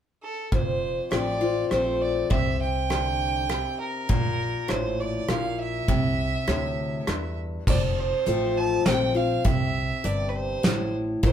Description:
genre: honky-tonk and classic country.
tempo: 101 BPM.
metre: 3/4.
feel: straight.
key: F major.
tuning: A4 = 440 Hz.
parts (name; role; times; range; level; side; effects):
clear fiddle; melody; 0.2-11.3 s; A4 to A5; -29 LUFS; right 5 dB; none.
picked steel-string acoustic guitar; accompaniment; 0.5-11.3 s; F2 to F4; -28 LUFS; left 5 dB; none.
upright bass; bass; 0.5-11.3 s; F1 to E2; -30 LUFS; right 1 dB; none.
soft brush drum kit; drums; 0.5-11.3 s; crash cymbal, hi-hat, kick drum, rim click, snare drum; -26 LUFS; right 1 dB; none.
room: moderate large studio reverb, RT60 0.8 s.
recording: band playing live in one room.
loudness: -23 LUFS.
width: side -9 dB against mid.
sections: 0.5-7.7 A section; 7.7-11.3 B section.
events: none.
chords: 0.0 N.C.; 0.5 F; 2.3 C5; 4.1 Bbmaj7(no3); 5.9 C; 7.7 F; 9.5 C.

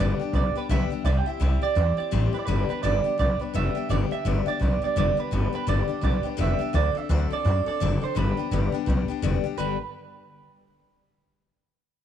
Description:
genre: rockabilly.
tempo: 169 BPM.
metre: 4/4.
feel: swing 61% on 8ths.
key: G major.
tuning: A4 = 440 Hz.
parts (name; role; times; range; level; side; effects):
electric guitar through a small old amp; melody; 0.0-9.8 s; B4 to G5; -29 LUFS; right 9 dB; wide subtle chorus, tape echo.
picked steel-string acoustic guitar; accompaniment; 0.0-9.8 s; G2 to A4; -29 LUFS; left 11 dB; none.
upright bass; bass; 0.0-9.8 s; F1 to F#2; -24 LUFS; equal; none.
room: light reverb, small room ambience.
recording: 1960s-style stereo with parts hard left and right.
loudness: -22 LUFS.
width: side -10 dB against mid.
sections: 0.0-9.6 A section; 9.6-11.0 B section.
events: none.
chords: 0.0 G; 1.1 C; 2.5 G; 6.7 D7; 8.2 G; 9.6 G5.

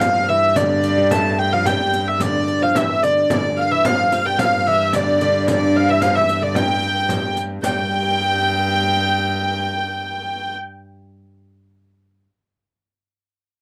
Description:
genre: medieval dance.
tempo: 110 BPM.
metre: 2/4.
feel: straight.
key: unclear.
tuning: A4 = 440 Hz.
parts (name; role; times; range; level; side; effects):
dark hurdy-gurdy; melody; 0.0-10.5 s; D5 to A5; -20 LUFS; equal; none.
lute; second line; 0.0-11.2 s; D3 to A3; -27 LUFS; equal; none.
rich viola da gamba; drone; 0.0-10.6 s; G2; -27 LUFS; equal; none.
frame drum; percussion; 0.0-7.9 s; none; -29 LUFS; equal; none.
riq; percussion; 0.0-7.9 s; none; -31 LUFS; equal; none.
rich fiddle; second line; 3.3-10.6 s; D5 to G5; -30 LUFS; equal; none.
room: moderate booth ambience, RT60 0.2 s.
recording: dry, close 1970s-style studio recording.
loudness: -18 LUFS.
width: mono.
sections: 0.0-7.6 A section; 7.6-9.8 B section.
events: none.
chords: none.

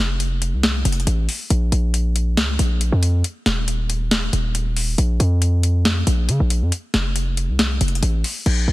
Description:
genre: hip hop, trap.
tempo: 138 BPM.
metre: 4/4.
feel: half-time.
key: Bb harmonic minor.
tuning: A4 = 440 Hz.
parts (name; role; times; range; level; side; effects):
hard-hitting 808-style bass; bass; 0.0-8.7 s; Eb1 to Db3; -18 LUFS; equal; none.
trap drum kit; drums; 0.2-8.6 s; crash cymbal, hi-hat, snare drum; -22 LUFS; left 1 dB; none.
room: little or no reverb.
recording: dense, heavily limited modern master.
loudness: -17 LUFS.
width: side -18 dB against mid.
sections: 0.0-8.5 A section.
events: hi-hats muted 8.5.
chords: none.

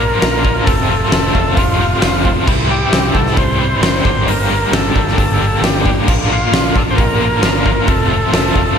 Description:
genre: classic rock.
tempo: 133 BPM.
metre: 4/4.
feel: straight.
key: unclear.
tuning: A4 = 442 Hz.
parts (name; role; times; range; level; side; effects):
overdriven tonewheel organ; melody; 0.0-8.8 s; F4 to C5; -19 LUFS; equal; slapback echo.
cranked stack guitar; riff; 0.0-8.8 s; F2 to G4; -17 LUFS; equal; overdrive, tremolo.
fingered electric bass; bass; 0.0-8.7 s; F1 to C2; -20 LUFS; equal; none.
huge arena drum kit; drums; 0.2-8.7 s; crash cymbal, hi-hat, kick drum, snare drum; -15 LUFS; equal; none.
room: moderate lush hall reverb, RT60 2.0 s.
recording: big arena sound.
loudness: -11 LUFS.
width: side -7 dB against mid.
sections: 0.0-8.8 A section.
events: none.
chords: 0.0 Bb; 0.7 F; 2.5 C; 4.1 Gmadd9; 6.1 Bb; 7.9 F.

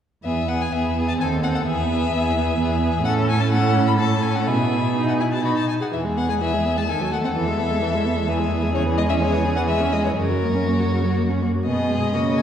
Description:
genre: quick classical-period movement for string quartet.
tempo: 118-132 BPM.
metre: 3/4.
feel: rubato.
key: E major, B major from 8.7 s.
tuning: A4 = 440 Hz.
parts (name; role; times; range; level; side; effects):
rich violin; melody; 0.2-12.4 s; A#4 to B5; -26 LUFS; left 4 dB; none.
rich viola; accompaniment; 0.2-12.4 s; C#3 to G#4; -24 LUFS; right 1 dB; none.
rich cello; bass; 0.2-12.4 s; D#2 to C#3; -22 LUFS; right 2 dB; none.
clear violin; second line; 0.3-12.4 s; F#4 to A4; -27 LUFS; left 3 dB; none.
room: wet concert hall reverb, RT60 2.2 s.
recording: heard from further back in the room.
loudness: -19 LUFS.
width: side -9 dB against mid.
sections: 0.2-11.7 A section.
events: none.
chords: 0.2 E; 1.2 D#dim7; 1.7 E; 3.1 A6; 4.5 E/B; 5.4 B; 5.9 E; 6.9 D#dim7; 7.4 E; 8.7 C#m/E; 10.2 F#; 11.7 B.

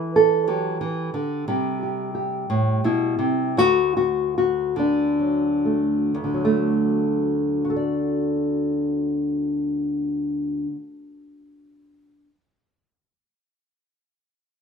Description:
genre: folk, solo fingerstyle acoustic guitar.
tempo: 39-61 BPM (dotted quarters).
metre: 6/8.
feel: straight.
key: D mixolydian.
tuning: A4 = 439 Hz.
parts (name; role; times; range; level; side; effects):
nylon-string guitar; solo; 0.0-12.3 s; D2 to D5; -20 LUFS; equal; none.
room: moderate studio reverb, RT60 0.6 s.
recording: minimal, uncompressed stereo recording.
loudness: -20 LUFS.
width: side -6 dB against mid.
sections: 0.0-6.1 A section; 6.1-12.1 B section.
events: slowing down 1.5-6.1.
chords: 0.0 Em; 1.5 C; 3.6 D.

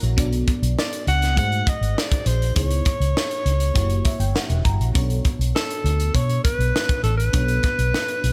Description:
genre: polished 1980s jazz-funk pop.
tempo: 100 BPM.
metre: 4/4.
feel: straight.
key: B minor.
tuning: A4 = 438 Hz.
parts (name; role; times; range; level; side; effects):
bell-like FM electric piano; accompaniment; 0.0-8.3 s; A3 to A#5; -33 LUFS; equal; phaser, ensemble chorus.
vintage muted fingered electric bass; bass; 0.0-8.3 s; E1 to B2; -23 LUFS; equal; none.
crisp fusion drum kit; drums; 0.0-8.3 s; hi-hat, kick drum, snare drum; -26 LUFS; equal; gated reverb.
breathy alto saxophone; melody; 0.8-8.3 s; A4 to F#5; -28 LUFS; equal; none.
room: little or no reverb.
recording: none.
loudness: -21 LUFS.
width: mono.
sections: 0.0-8.3 A section.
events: FM electric piano fill 0.0, 3.8-4.9.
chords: 0.2 Bm9; 1.4 G#7b9; 2.6 C#m9; 3.8 F#7b9; 4.9 Bm9.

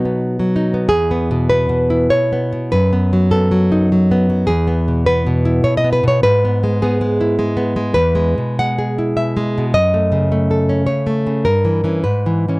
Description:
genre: romantic piece for solo classical guitar.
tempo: 86-108 BPM.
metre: 3/4.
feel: rubato.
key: E major.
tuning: A4 = 440 Hz.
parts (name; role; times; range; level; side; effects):
nylon-string guitar; solo; 0.0-12.6 s; E2 to F#5; -13 LUFS; equal; none.
room: little or no reverb.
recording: dry, close 1970s-style studio recording.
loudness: -13 LUFS.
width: side -25 dB against mid.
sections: 0.9-12.6 A section.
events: none.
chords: 0.0 B; 0.9 E; 2.7 B7/F#; 4.5 E; 6.2 E/G#; 7.9 E; 9.7 F#m; 11.4 Gdim7; 12.1 C#m/G#.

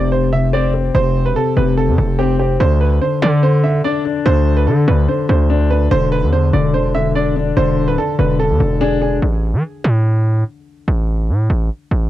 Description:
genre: hip hop, drill.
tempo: 145 BPM.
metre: 4/4.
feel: half-time.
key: A minor.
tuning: A4 = 440 Hz.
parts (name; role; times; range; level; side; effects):
clear upright piano; melody; 0.0-9.2 s; G4 to E5; -20 LUFS; right 6 dB; low-pass filter.
dark grand piano; accompaniment; 0.0-9.2 s; C3 to D4; -18 LUFS; left 6 dB; low-pass filter, cassette tape.
distorted 808-style bass; bass; 0.0-12.1 s; D1 to E3; -15 LUFS; right 1 dB; distortion.
room: light reverb.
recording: home recording on cassette.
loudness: -13 LUFS.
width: side -13 dB against mid.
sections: 0.0-9.2 A section; 9.2-12.1 B section.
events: filter sweep 9.2-12.1.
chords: 0.0 F; 2.6 Cadd9/D; 9.2 A5.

